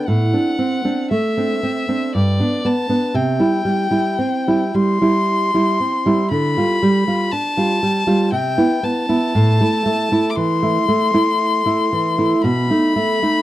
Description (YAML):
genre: romantic duo for violin and classical guitar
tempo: 58 BPM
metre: 3/4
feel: rubato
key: unclear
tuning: A4 = 440 Hz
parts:
  - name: rich violin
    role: melody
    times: 0.0-13.4 s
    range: D5 to D6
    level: -21 LUFS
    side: left 4 dB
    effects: none
  - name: nylon-string guitar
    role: accompaniment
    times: 0.0-13.4 s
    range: G2 to F4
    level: -16 LUFS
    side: right 1 dB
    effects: none
room: studio reverb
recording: dry, close 1970s-style studio recording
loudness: -15 LUFS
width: side -14 dB against mid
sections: 0.0-13.4 A section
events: none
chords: 0.1 D7/A; 2.1 G; 3.2 C; 6.3 G7/D; 8.3 Cmaj7; 9.3 Am; 12.4 B7